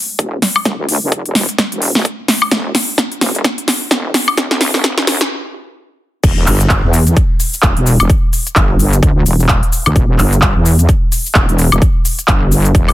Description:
bass house; 129 BPM; 4/4; swing 58% on 16ths; E minor; A4 = 438 Hz
wobble bass; bass; 0.2-12.9 s; E1 to E2; -14 LUFS; equal; chorus, overdrive, sidechain pumping, high-pass filter
big-room dance drum kit; drums; 0.2-12.9 s; crash cymbal, handclaps, hi-hat, shaker, snare drum, woodblock; -14 LUFS; equal; overdrive
electronic kick drum; drums; 0.2-12.9 s; -14 LUFS; equal; overdrive, high-pass filter on kick
little or no reverb; dense, heavily limited modern master, high-pass filter; -11 LUFS; side -15 dB against mid
0.0-6.2 A section; 6.2-12.9 B section
build-up 0.0-6.2; drum fill 0.0-5.3; stop 5.3-6.2; drop 6.2-12.9

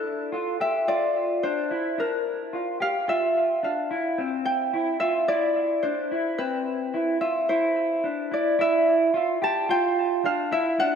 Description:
dream pop; 109 BPM; 4/4; straight; A4 = 442 Hz
Celtic harp; melody; 0.0-11.0 s; A4 to A5; -24 LUFS; equal; analog delay
mellow electric guitar; arpeggios; 0.0-11.0 s; C4 to G4; -26 LUFS; right 1 dB; lush chorus, analog delay
wet plate reverb, RT60 2.4 s; dreamy mix soaked in reverb; -22 LUFS; side -7 dB against mid
0.0-8.6 A section; 8.6-11.0 B section
0.0 Dm; 4.2 Cmaj7; 8.6 Dmadd9

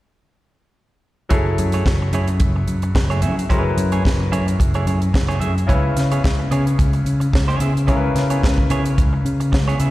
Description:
disco; 110 BPM; 4/4; swing 56% on 16ths; F# minor; A4 = 440 Hz
clean electric guitar; accompaniment; 1.3-9.9 s; A3 to E5; -27 LUFS; right 5 dB; spring reverb, slapback echo
clear grand piano; accompaniment; 1.3-9.9 s; C#3 to B4; -25 LUFS; left 4 dB; slapback echo
fingered electric bass; bass; 1.3-9.9 s; F#1 to C#3; -19 LUFS; equal
tight funk drum kit; drums; 1.3-9.9 s; hi-hat, kick drum, snare drum; -20 LUFS; equal
small room ambience; live gig heard through the venue's PA, recital hall reverb; -16 LUFS; side -16 dB against mid
1.3-9.9 A section
1.3 F#m9; 5.7 C#m7

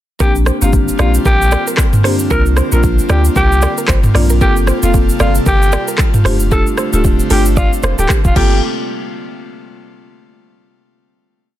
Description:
afrobeats; 114 BPM; 4/4; swing 58% on 16ths; A4 = 440 Hz
growling alto saxophone; melody; 0.2-8.6 s; F4 to Bb4; -19 LUFS; equal; digital delay
marimba with medium hard mallets; accompaniment; 0.2-8.6 s; A3 to A4; -19 LUFS; equal
airy breathy pad; sustained chords; 0.6-8.6 s; C3 to A4; -25 LUFS; left 1 dB; chorus
direct-recorded clean electric guitar; riff; 0.2-8.5 s; G4 to D5; -24 LUFS; right 6 dB; digital delay
punchy sub bass; bass; 0.2-8.6 s; D1 to D2; -14 LUFS; equal
afro-pop drum kit; drums; 0.2-8.5 s; crash cymbal, handclaps, hi-hat, kick drum, rim click, shaker, toms; -15 LUFS; equal; overdrive
digital ambience; dense, heavily limited modern master; -10 LUFS; side -13 dB against mid
0.2-8.6 chorus; 8.6-10.7 final hit
0.2 Bb69; 4.4 Gm11; 6.3 F69; 8.4 Gm11; 8.6 N.C.

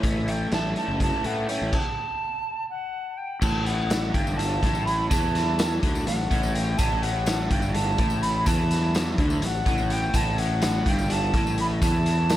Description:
psychedelic rock; 250 BPM (eighths); 7/8; straight; A mixolydian; A4 = 443 Hz
silver concert flute; melody; 0.0-12.4 s; E5 to B5; -29 LUFS; right 1 dB; analog delay
overdriven combo organ; sustained chords; 0.0-12.4 s; E3 to C#5; -38 LUFS; right 4 dB
overdriven electric guitar; riff; 0.0-12.4 s; G2 to E4; -28 LUFS; left 1 dB; rotary speaker
fuzz fingered electric bass; bass; 0.0-12.4 s; F#1 to A2; -27 LUFS; equal; overdrive
raw garage drum kit; drums; 0.0-12.4 s; crash cymbal, hi-hat, kick drum, snare drum; -26 LUFS; equal
tambourine; percussion; 3.4-12.4 s; -40 LUFS; left 4 dB
moderate spring reverb, RT60 1.2 s; echo-heavy mix; -22 LUFS; side -13 dB against mid
0.0-3.4 A section; 3.4-12.4 B section
stop 1.7-3.4
0.0 A

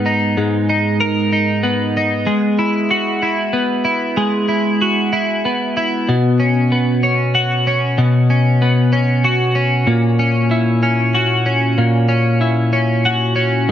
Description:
pop; 63 BPM (dotted quarters); 6/8; straight; B major; A4 = 440 Hz
twelve-string electric guitar; solo; 0.0-13.7 s; G#2 to A#4; -14 LUFS; equal; analog chorus
light reverb, digital ambience; -14 LUFS; side -10 dB against mid
0.0-6.1 A section; 6.1-13.7 B section
0.0 G#madd9; 2.3 Eadd9/G#; 6.1 Bsus2; 9.9 F#7/A#

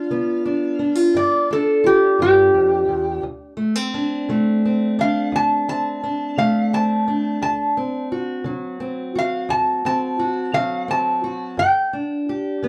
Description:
acoustic country blues, solo or duo; 57 BPM (dotted quarters); 12/8; straight; D mixolydian; A4 = 435 Hz
metal-body resonator slide guitar; melody; 0.0-11.9 s; G4 to A5; -20 LUFS; equal; plate reverb
fingerpicked steel-string acoustic guitar; accompaniment; 0.0-12.7 s; D2 to G4; -24 LUFS; equal
wet booth ambience, RT60 0.3 s; heard from further back in the room; -20 LUFS; mono
0.0-12.7 A section
resonator guitar played with a steel bar solo 0.0-12.7
0.0 G7; 3.2 D7; 11.6 G5

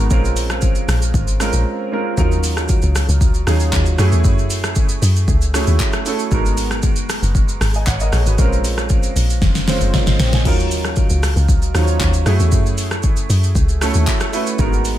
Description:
amapiano; 116 BPM; 4/4; straight; A4 = 440 Hz
warm grand piano; accompaniment; 0.0-15.0 s; Gb3 to Ab5; -22 LUFS; right 2 dB; analog chorus
deep log drum bass; bass; 0.0-15.0 s; F1 to Gb2; -17 LUFS; equal
deep house drum kit; drums; 0.1-15.0 s; crash cymbal, handclaps, hi-hat, kick drum, rim click, shaker, snare drum; -18 LUFS; equal
light reverb, digital ambience; -14 LUFS; side -13 dB against mid
0.0-15.0 A section
break 1.7-2.2; drum fill 9.4-10.5
0.1 Bbm9; 2.2 Ebm9; 4.0 Gbm9; 6.3 Abm9; 8.4 Bbm9; 10.5 Ebm9; 12.3 Gbm9

